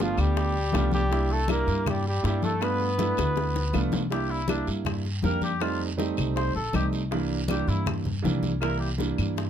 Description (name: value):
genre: Afro-Cuban jazz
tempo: 160 BPM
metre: 4/4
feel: straight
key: C mixolydian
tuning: A4 = 439 Hz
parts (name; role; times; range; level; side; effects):
- breathy trumpet; melody; 0.0-3.9 s; F4 to B4; -29 LUFS; equal; none
- mellow cor anglais; second line; 0.0-8.9 s; F3 to C5; -32 LUFS; left 1 dB; none
- clear baby grand piano; accompaniment; 0.0-9.5 s; E3 to G4; -30 LUFS; right 5 dB; none
- upright bass; bass; 0.0-9.5 s; G1 to G2; -28 LUFS; left 1 dB; none
- bongos; percussion; 0.0-9.5 s; none; -35 LUFS; left 8 dB; none
- claves; percussion; 0.2-9.4 s; none; -39 LUFS; left 7 dB; none
- congas; percussion; 0.2-9.5 s; none; -33 LUFS; left 3 dB; none
- guiro; percussion; 0.2-9.5 s; none; -42 LUFS; right 6 dB; none
room: little or no reverb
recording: close, detailed microphones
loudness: -24 LUFS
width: side -9 dB against mid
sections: 0.0-4.1 A section; 4.1-9.5 B section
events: drum fill 3.2-4.1; cor anglais solo 4.1-9.5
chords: 0.0 G9; 1.1 C9; 2.6 G9; 4.1 C9; 5.6 F9; 7.1 C9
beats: 0.36 0.74 | 1.11 1.49 1.86 2.24 | 2.61 2.99 3.36 3.74 | 4.11 4.49 4.87 5.24 | 5.62 5.99 6.37 6.74 | 7.12 7.49 7.87 8.24 | 8.62 8.99 9.37